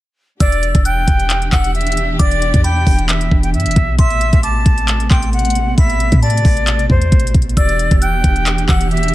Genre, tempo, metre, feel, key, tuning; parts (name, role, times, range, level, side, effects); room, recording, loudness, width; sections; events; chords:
hip hop, trap; 134 BPM; 4/4; half-time; E minor; A4 = 441 Hz
jazz flute; melody; 0.4-9.1 s; C5 to A5; -19 LUFS; left 1 dB; ping-pong delay
glassy synth bell; second line; 0.4-9.1 s; A5 to F#6; -27 LUFS; left 1 dB; chorus, ping-pong delay
dark symphonic string section; sustained chords; 0.4-9.1 s; B2 to G4; -23 LUFS; right 2 dB
clean 808-style bass; bass; 0.4-9.1 s; E1 to A2; -16 LUFS; equal
trap drum kit; drums; 0.4-9.1 s; handclaps, hi-hat, kick drum; -14 LUFS; equal; vintage 12-bit sampler grit
digital ambience; -12 LUFS; side -16 dB against mid
0.4-9.1 A section
0.4 Em7; 4.0 Amadd9; 7.6 Em7